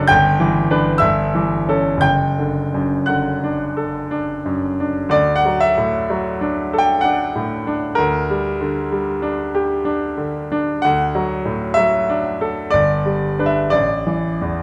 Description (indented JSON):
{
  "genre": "classical, romantic nocturne for solo piano",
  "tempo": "57-68 BPM",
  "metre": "3/4",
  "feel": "rubato",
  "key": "D major",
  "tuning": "A4 = 443 Hz",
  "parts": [
    { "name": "bright grand piano", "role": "solo", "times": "0.0-14.6 s", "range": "F#1 to A6", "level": "-18 LUFS", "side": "equal", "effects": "none" }
  ],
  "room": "moderate recital hall reverb, RT60 1.6 s",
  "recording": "dark, warm production",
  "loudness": "-19 LUFS",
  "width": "mono",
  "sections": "0.0-5.1 A section; 5.1-14.6 B section",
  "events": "none",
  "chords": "0.1 Em7/G; 1.0 A7/G; 2.0 D/F#; 5.1 D; 8.0 Gm/D; 10.8 D; 12.7 G; 13.7 A5"
}